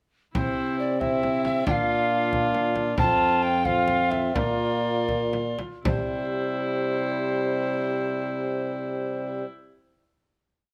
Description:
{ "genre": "classical, renaissance-style consort dance", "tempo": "76-92 BPM (dotted quarters)", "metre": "6/8", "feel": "straight", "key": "C mixolydian", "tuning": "A4 = 441 Hz", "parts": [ { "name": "mellow hollow soprano recorder", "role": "melody", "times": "0.3-9.4 s", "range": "C5 to A5", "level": "-30 LUFS", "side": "equal", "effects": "none" }, { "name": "rich viola", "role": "second line", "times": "0.3-9.5 s", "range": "E4 to F4", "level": "-34 LUFS", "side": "equal", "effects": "none" }, { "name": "warm bassoon", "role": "accompaniment", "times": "0.3-9.4 s", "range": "G3 to D4", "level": "-31 LUFS", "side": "equal", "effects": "none" }, { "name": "frame drum", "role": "percussion", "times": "0.3-6.1 s", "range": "none", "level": "-32 LUFS", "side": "equal", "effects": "none" }, { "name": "warm trombone", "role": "bass", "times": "0.4-9.4 s", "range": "F2 to C3", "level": "-32 LUFS", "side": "equal", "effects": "none" } ], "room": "moderate stone room reverb, RT60 1.1 s", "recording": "none", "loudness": "-25 LUFS", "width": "mono", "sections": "0.3-5.8 A section; 5.8-9.0 final chord", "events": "slowing down 2.3-5.8", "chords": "0.3 C; 1.7 Bb; 3.0 F; 4.3 Bb; 5.8 C" }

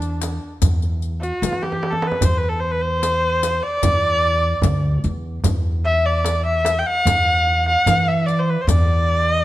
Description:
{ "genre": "Persian modal ensemble", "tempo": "74 BPM", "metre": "4/4", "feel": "straight", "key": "E dastgah shur", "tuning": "A4 = 440 Hz", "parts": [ { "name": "clear kamancheh", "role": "melody", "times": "0.0-9.4 s", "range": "D4 to G5", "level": "-19 LUFS", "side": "equal", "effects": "none" }, { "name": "upright bass", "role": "bass", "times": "0.0-9.4 s", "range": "D2 to E3", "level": "-20 LUFS", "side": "equal", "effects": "none" }, { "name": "riq", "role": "percussion", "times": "0.0-8.9 s", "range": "none", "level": "-29 LUFS", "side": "left 8 dB", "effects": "none" }, { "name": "tombak", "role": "percussion", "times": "0.0-8.9 s", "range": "none", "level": "-24 LUFS", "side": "right 2 dB", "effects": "none" } ], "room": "light reverb", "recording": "close, detailed microphones", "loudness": "-17 LUFS", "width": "side -15 dB against mid", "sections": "0.0-9.4 A section", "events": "drum fill 1.4-2.2", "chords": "none" }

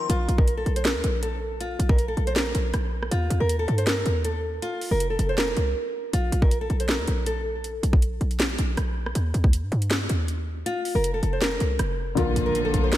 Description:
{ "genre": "hip hop, trap", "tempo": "159 BPM", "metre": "4/4", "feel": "half-time", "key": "unclear", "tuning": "A4 = 445 Hz", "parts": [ { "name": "nylon-string guitar", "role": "melody", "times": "0.0-7.4, 10.7-13.0 s", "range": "F4 to C5", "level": "-28 LUFS", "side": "equal", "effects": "ping-pong delay" }, { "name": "felt-muted upright piano", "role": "accompaniment", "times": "0.0-0.1, 12.2-13.0 s", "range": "D3 to Bb4", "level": "-26 LUFS", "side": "left 4 dB", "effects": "none" }, { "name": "clear symphonic string section", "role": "sustained chords", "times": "0.0-0.1, 12.2-13.0 s", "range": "D3 to F4", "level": "-35 LUFS", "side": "equal", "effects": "none" }, { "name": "short 808-style bass", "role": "bass", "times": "0.1-13.0 s", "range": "F1 to G2", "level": "-25 LUFS", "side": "equal", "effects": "none" }, { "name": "trap drum kit", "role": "drums", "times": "0.1-13.0 s", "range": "hi-hat, kick drum, rim click, snare drum", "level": "-25 LUFS", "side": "equal", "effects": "none" }, { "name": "impact", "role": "sound effects", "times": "12.2-13.0 s", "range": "none", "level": "-29 LUFS", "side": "equal", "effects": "none" } ], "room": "light reverb", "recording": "none", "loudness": "-22 LUFS", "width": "side -14 dB against mid", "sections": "0.1-12.2 A section", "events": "break 5.8-6.1; impact 12.2-13.0", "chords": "0.1 N.C.; 3.1 Eb; 4.6 Fsus4; 6.1 N.C.; 9.2 Eb; 10.7 Fsus4; 12.2 Bb" }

